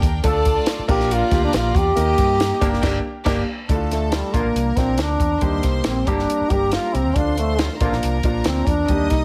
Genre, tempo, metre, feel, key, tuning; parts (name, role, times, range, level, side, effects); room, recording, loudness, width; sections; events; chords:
uptempo 1960s-style soul; 139 BPM; 4/4; straight; A4 = 441 Hz
clear studio violin section; second line; 0.0-9.2 s; D4 to Eb6; -33 LUFS; equal
warm grand piano; accompaniment; 0.0-9.2 s; F3 to C5; -27 LUFS; equal
vintage muted fingered electric bass; bass; 0.0-9.2 s; G1 to G2; -26 LUFS; equal
compact cocktail drum kit; drums; 0.0-9.2 s; crash cymbal, hi-hat, kick drum, snare drum; -25 LUFS; equal
warm trombone; melody; 0.2-9.2 s; G3 to A4; -24 LUFS; equal; analog delay
warm horn section; second line; 2.6-7.9 s; D3 to G4; -34 LUFS; equal
light reverb, small room ambience; heavily compressed radio sound; -20 LUFS; mono
0.0-3.7 A section; 3.7-9.2 B section
band accent 2.0-3.7; trombone solo 3.7-9.2
0.2 Dm; 0.9 Bb; 2.0 Eb; 2.6 Gm; 3.7 Dm; 4.3 Bb; 5.4 Eb; 6.1 Gm; 7.2 Dm; 7.8 Bb